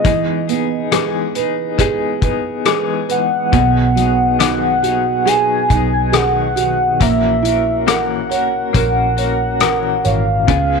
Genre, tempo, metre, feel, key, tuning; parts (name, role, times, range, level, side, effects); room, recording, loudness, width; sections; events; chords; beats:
pop ballad; 69 BPM; 4/4; straight; A4 = 440 Hz
warm velvety synth lead; melody; 0.0-10.8 s; D#5 to G#5; -17 LUFS; left 1 dB; chorus
felt-muted upright piano; accompaniment; 0.0-10.8 s; B2 to C#5; -19 LUFS; right 12 dB
direct-recorded clean electric guitar; arpeggios; 0.0-10.8 s; A#2 to A#4; -21 LUFS; left 13 dB; tremolo
loose indie drum kit; drums; 0.0-10.7 s; hi-hat, kick drum, rim click; -19 LUFS; left 4 dB
vintage muted fingered electric bass; bass; 3.5-10.8 s; G#1 to C#2; -21 LUFS; equal
light reverb, small room ambience; 1960s-style stereo with parts hard left and right; -13 LUFS; side -5 dB against mid
0.0-10.8 A section
0.0 Emaj7; 3.5 B6; 7.0 F#7/A#
| 0.05 0.92 1.79 2.66 | 3.53 4.40 5.27 6.14 | 7.01 7.88 8.74 9.62 | 10.48